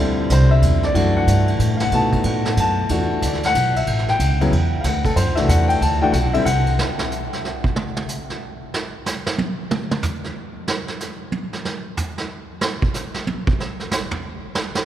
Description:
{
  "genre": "jazz piano trio",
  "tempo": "185 BPM",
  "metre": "3/4",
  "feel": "swing 63% on 8ths",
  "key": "D mixolydian",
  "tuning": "A4 = 440 Hz",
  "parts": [
    { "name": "warm baby grand piano", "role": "melody", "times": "0.0-6.7 s", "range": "C#3 to A5", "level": "-20 LUFS", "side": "left 2 dB", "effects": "none" },
    { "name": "upright bass", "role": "bass", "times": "0.0-6.8 s", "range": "A1 to B2", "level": "-19 LUFS", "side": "right 1 dB", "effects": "none" },
    { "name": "vintage brush drum kit", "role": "drums", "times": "0.3-14.8 s", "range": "hi-hat, kick drum, ride cymbal, snare drum, toms", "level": "-24 LUFS", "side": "right 2 dB", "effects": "none" }
  ],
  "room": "wet cathedral reverb, RT60 6.6 s",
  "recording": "recorded in a church or concert hall",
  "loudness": "-18 LUFS",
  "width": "side -11 dB against mid",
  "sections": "0.0-6.8 A section; 6.8-14.8 A section",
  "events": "grand piano solo 0.0-6.8; drum solo 6.8-14.8",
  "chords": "0.0 D7; 1.9 B7; 2.9 E5; 3.9 A7; 4.8 D7; 6.8 N.C.",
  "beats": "0.30 0.63 | 0.95 1.28 1.60 | 1.93 2.25 2.58 | 2.90 3.22 3.55 | 3.87 4.20 4.52 | 4.84 5.17 5.49 | 5.82 6.14 6.46 | 6.79 7.11 7.44 | 7.76 8.08 8.41 | 8.73 9.06 9.38 | 9.71 10.03 10.35 | 10.68 11.00 11.32 | 11.65 11.97 12.29 | 12.62 12.94 13.26 | 13.59 13.91 14.23 | 14.55"
}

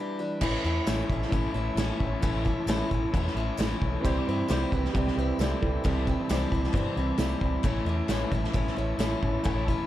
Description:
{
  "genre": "folk rock and heartland rock",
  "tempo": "133 BPM",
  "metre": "4/4",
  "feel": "straight",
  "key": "unclear",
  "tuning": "A4 = 441 Hz",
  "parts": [
    { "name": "picked steel-string acoustic guitar", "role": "accompaniment", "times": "0.0-9.9 s", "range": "A2 to G4", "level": "-33 LUFS", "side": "left 3 dB", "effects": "none" },
    { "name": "electric guitar through a small old amp", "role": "riff", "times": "0.0-9.9 s", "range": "A2 to E4", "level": "-32 LUFS", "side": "right 1 dB", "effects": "none" },
    { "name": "dark symphonic string section", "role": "sustained chords", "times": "0.4-9.9 s", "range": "E4 to A5", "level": "-41 LUFS", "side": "equal", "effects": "none" },
    { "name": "fingered electric bass", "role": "bass", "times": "0.4-9.7 s", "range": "A1 to G2", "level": "-30 LUFS", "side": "equal", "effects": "none" },
    { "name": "loose indie drum kit", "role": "drums", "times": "0.4-9.8 s", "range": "crash cymbal, kick drum, snare drum", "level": "-30 LUFS", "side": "equal", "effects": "none" },
    { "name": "tambourine", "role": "percussion", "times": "0.9-9.1 s", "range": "none", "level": "-47 LUFS", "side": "right 10 dB", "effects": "none" },
    { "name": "warm upright piano", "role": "second line", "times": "4.0-7.4 s", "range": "E4 to C5", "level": "-37 LUFS", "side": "right 5 dB", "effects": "none" }
  ],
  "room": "small room ambience",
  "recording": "dark, warm production",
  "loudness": "-25 LUFS",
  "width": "side -13 dB against mid",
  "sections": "0.4-9.9 A section",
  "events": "break 0.0-0.4",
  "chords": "0.4 A; 4.0 C; 7.7 A",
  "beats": "| 0.42 0.87 1.32 1.77 | 2.23 2.68 3.13 3.58 | 4.03 4.49 4.94 5.39 | 5.84 6.29 6.75 7.20 | 7.65 8.11 8.56 9.01 | 9.46"
}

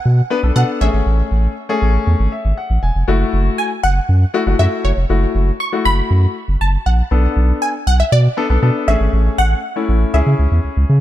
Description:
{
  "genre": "dance-pop",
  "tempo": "119 BPM",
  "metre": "4/4",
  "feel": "straight",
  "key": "F# minor",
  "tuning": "A4 = 440 Hz",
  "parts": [
    { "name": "wide unison pluck", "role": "melody", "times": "0.0-10.9 s", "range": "C#5 to C#6", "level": "-21 LUFS", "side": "equal", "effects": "dub echo" },
    { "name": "warm sub bass", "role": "bass", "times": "0.1-11.0 s", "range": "E1 to C#3", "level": "-14 LUFS", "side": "equal", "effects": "none" },
    { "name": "clear baby grand piano", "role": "accompaniment", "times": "0.3-10.9 s", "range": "A3 to G#5", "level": "-20 LUFS", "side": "left 4 dB", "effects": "none" }
  ],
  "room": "small room ambience",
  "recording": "dark, warm production",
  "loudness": "-13 LUFS",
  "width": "side -13 dB against mid",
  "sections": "0.0-11.0 A section",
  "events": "grand piano fill 2.1-3.1",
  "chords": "0.0 Bm7; 0.8 Amaj7; 3.1 F#m7; 7.1 Bm7; 8.9 Amaj7; 10.1 C#m",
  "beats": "0.05 0.56 | 1.06 1.57 2.07 2.58 | 3.08 3.58 4.09 4.59 | 5.10 5.60 6.10 6.61 | 7.11 7.62 8.12 8.62 | 9.13 9.63 10.14 10.64"
}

